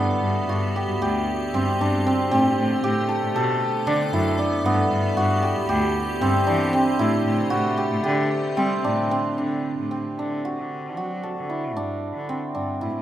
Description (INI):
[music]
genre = contemporary instrumental, chamber music in an uneven meter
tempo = 229 BPM (eighths)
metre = 9/8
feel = straight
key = D mixolydian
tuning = A4 = 440 Hz
[part]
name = icy glass pad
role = sustained chords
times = 0.0-9.4 s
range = C3 to A4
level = -30 LUFS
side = left 1 dB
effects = chorus, built-in reverb
[part]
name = hammered dulcimer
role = arpeggios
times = 0.0-13.0 s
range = B3 to A4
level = -22 LUFS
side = right 1 dB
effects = none
[part]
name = clear cello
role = bass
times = 0.0-13.0 s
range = D2 to G3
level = -26 LUFS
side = left 1 dB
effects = none
[sound]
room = light reverb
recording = close, detailed microphones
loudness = -20 LUFS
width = side -12 dB against mid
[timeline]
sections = 0.0-9.4 A section; 9.4-13.0 B section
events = none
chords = 0.0 Gmaj7; 1.0 D7sus4; 2.3 Am7; 3.4 Bm7; 4.7 Gmaj7; 5.7 D7sus4; 7.0 Am7; 8.0 D7sus4; 9.4 D7; 11.8 G5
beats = 0.22 0.49 0.75 1.01 1.28 1.54 1.80 2.06 | 2.32 2.58 2.84 3.10 3.36 3.62 3.88 4.14 4.39 | 4.65 4.91 5.17 5.43 5.69 5.95 6.21 6.47 6.73 | 6.99 7.25 7.51 7.78 8.04 8.30 8.57 8.84 9.11 | 9.38 9.64 9.91 10.18 10.44 10.71 10.97 11.23 11.50 | 11.76 12.02 12.29 12.55 12.81